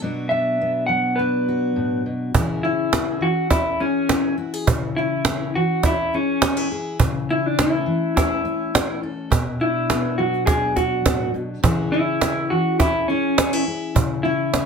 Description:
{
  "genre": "acoustic folk duo or small band",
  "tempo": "103 BPM",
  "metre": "4/4",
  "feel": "straight",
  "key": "unclear",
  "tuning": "A4 = 441 Hz",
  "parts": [
    { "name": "fingerpicked steel-string acoustic guitar", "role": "accompaniment", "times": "0.0-14.7 s", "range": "A2 to A4", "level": "-25 LUFS", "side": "left 2 dB", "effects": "none" },
    { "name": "electric guitar through a small old amp", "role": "melody", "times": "0.3-14.7 s", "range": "C#4 to F#5", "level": "-21 LUFS", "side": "equal", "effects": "harmonic tremolo" },
    { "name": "cajon", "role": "percussion", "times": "2.3-14.7 s", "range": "none", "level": "-20 LUFS", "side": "right 3 dB", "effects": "none" }
  ],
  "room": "moderate studio reverb, RT60 0.6 s",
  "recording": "close, detailed microphones",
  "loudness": "-18 LUFS",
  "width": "side -6 dB against mid",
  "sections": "0.0-2.3 A section; 2.3-14.7 A section",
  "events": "none",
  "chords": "0.0 Bm; 2.3 C#m; 7.0 A/C#; 9.3 Bm; 11.6 C#m"
}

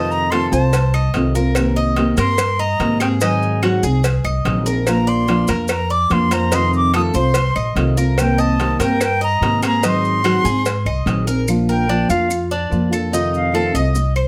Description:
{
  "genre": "latin, Cuban son and guajira",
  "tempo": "145 BPM",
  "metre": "4/4",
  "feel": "straight",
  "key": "Bb major",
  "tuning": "A4 = 440 Hz",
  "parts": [
    { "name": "silver concert flute", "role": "melody", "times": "0.0-14.0 s", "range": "Eb5 to Eb6", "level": "-23 LUFS", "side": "equal", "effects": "none" },
    { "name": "nylon-string guitar", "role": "accompaniment", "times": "0.0-14.0 s", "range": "C3 to Ab4", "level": "-22 LUFS", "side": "equal", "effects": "none" },
    { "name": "Cuban tres", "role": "arpeggios", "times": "0.0-14.3 s", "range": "D4 to Eb5", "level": "-25 LUFS", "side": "equal", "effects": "none" },
    { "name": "upright bass", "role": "bass", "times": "0.0-14.3 s", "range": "Bb1 to Ab2", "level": "-22 LUFS", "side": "equal", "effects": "none" },
    { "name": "maracas", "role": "percussion", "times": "0.1-14.3 s", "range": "none", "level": "-35 LUFS", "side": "equal", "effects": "none" },
    { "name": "claves", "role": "percussion", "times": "0.3-14.3 s", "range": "none", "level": "-33 LUFS", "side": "equal", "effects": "none" },
    { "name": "cowbell", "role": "percussion", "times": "0.3-11.3 s", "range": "none", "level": "-27 LUFS", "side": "equal", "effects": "none" }
  ],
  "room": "light reverb",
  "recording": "none",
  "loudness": "-17 LUFS",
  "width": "mono",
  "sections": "0.0-11.5 A section; 11.5-14.3 B section",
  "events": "flute solo 11.5-14.3",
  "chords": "0.0 F7; 1.6 Cm7; 3.2 Ab7; 4.9 Bb; 6.5 F7; 8.2 Cm7; 9.8 Ab7; 11.5 Bb; 13.1 F7"
}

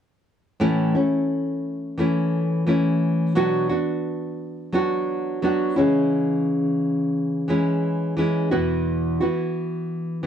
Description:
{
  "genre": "pop",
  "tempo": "87 BPM",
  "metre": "4/4",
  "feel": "swing 55% on 16ths",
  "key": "A major",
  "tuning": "A4 = 440 Hz",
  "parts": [
    { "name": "nylon-string guitar", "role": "accompaniment", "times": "0.6-10.3 s", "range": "E2 to F#4", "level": "-20 LUFS", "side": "equal", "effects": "none" }
  ],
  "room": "light reverb",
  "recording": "worn, warbling old tape, cassette tape, warbly pitch drift",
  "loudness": "-20 LUFS",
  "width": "side -8 dB against mid",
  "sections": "0.6-10.3 A section",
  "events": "none",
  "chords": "0.6 A; 3.4 Bm; 5.8 C#m; 8.5 Esus2"
}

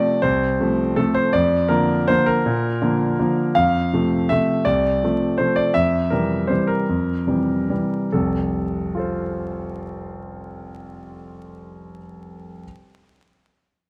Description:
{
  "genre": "classical, piano waltz",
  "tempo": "131-172 BPM",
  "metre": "3/4",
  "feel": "rubato",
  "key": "F major",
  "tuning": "A4 = 440 Hz",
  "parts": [
    { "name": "clear concert grand piano", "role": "solo", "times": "0.0-12.7 s", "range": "F1 to F5", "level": "-21 LUFS", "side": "equal", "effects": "none" }
  ],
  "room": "moderate scoring stage reverb, RT60 1.6 s",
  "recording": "close, detailed microphones, vinyl crackle",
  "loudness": "-20 LUFS",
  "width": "mono",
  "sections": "0.0-8.1 A section; 8.1-10.5 B section",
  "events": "slowing down 5.2-8.1",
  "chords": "0.0 F; 1.3 Bb/F; 3.6 F; 5.8 C7/F; 8.1 F"
}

